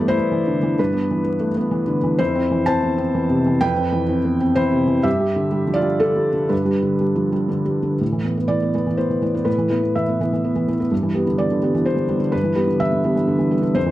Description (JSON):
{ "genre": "neoclassical minimalist piano", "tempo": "126 BPM", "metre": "3/4", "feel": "rubato", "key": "unclear", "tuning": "A4 = 440 Hz", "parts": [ { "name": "felt-muted upright piano", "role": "solo", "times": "0.0-13.9 s", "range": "F2 to A5", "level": "-17 LUFS", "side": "equal", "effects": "none" } ], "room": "wet studio reverb, RT60 0.5 s", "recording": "vinyl crackle", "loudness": "-17 LUFS", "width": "side -15 dB against mid", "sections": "0.0-8.0 A section; 8.0-13.9 B section", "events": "none", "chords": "0.0 G6; 2.2 Fmaj7; 5.1 G6; 8.0 Amadd9; 10.9 G6", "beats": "0.31 | 0.78 1.25 1.72 | 2.19 2.68 3.15 | 3.62 4.10 4.57 | 5.05 5.53 6.01 | 6.51 7.01 7.51 | 8.01 8.50 8.98 | 9.46 9.96 10.44 | 10.91 11.39 11.86 | 12.32 12.81 13.29 | 13.76" }